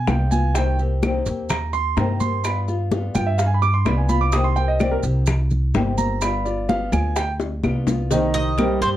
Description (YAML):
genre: latin, Cuban son and guajira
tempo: 127 BPM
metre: 4/4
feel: straight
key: C minor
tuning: A4 = 440 Hz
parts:
  - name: dark concert grand piano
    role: arpeggios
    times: 0.0-9.0 s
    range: Eb3 to Eb6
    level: -23 LUFS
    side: right 4 dB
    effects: none
  - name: upright bass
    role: bass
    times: 0.0-9.0 s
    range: G1 to G2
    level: -21 LUFS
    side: equal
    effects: none
  - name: nylon-string guitar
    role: accompaniment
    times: 0.1-9.0 s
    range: C3 to G4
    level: -27 LUFS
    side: left 4 dB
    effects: none
  - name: bongos and cowbell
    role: percussion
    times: 0.1-9.0 s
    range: none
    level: -28 LUFS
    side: left 5 dB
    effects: none
  - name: claves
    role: percussion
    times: 0.1-8.8 s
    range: none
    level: -34 LUFS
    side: right 1 dB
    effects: none
  - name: congas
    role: percussion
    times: 0.1-8.8 s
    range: none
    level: -25 LUFS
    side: left 1 dB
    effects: none
  - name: maracas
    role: percussion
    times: 0.1-9.0 s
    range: none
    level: -36 LUFS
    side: right 7 dB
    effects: none
  - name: Cuban tres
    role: melody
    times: 8.3-8.9 s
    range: C5 to Eb5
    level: -23 LUFS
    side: right 1 dB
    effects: none
room: moderate studio reverb, RT60 0.5 s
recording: dark, warm production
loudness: -18 LUFS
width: side -13 dB against mid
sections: 0.0-8.1 A section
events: grand piano solo 0.0-8.1; drum fill 7.4-8.1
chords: 0.0 G7; 0.6 Cm7; 2.4 G7; 4.3 Cm7; 6.2 G7; 8.1 Cm7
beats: 0.08 | 0.55 1.02 1.50 1.97 | 2.44 2.92 3.39 3.86 | 4.33 4.80 5.28 5.75 | 6.22 6.70 7.17 7.64 | 8.11 8.59